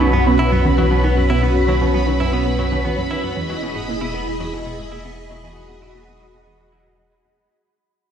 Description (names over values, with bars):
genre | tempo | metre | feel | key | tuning
ambient, sequencer-driven space music | 116 BPM | 4/4 | straight | unclear | A4 = 440 Hz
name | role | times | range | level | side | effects
string machine, full ensemble | sustained chords | 0.0-7.5 s | C#4 to D#5 | -21 LUFS | equal | phaser, ensemble chorus
direct-recorded clean electric guitar | arpeggios | 0.0-7.5 s | B2 to E4 | -26 LUFS | right 2 dB | auto-pan, ping-pong delay
analog pluck | riff | 0.0-7.4 s | D#2 to G#3 | -23 LUFS | right 1 dB | chorus, ping-pong delay
warm sub bass | bass | 0.0-7.5 s | E1 to B1 | -21 LUFS | equal | none
bubbling stepped-filter texture | texture | 0.0-7.5 s | B5 | -28 LUFS | right 2 dB | chorus, built-in reverb
room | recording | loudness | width
wet concert hall reverb, RT60 2.1 s | cassette tape | -16 LUFS | side -8 dB against mid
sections
0.0-7.5 A section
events
fade-out on synth arpeggio sound 0.0-7.5; fade-out on clean electric guitar 0.0-7.5; fade-out 0.0-7.5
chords
0.0 Bsus2; 3.4 Emaj7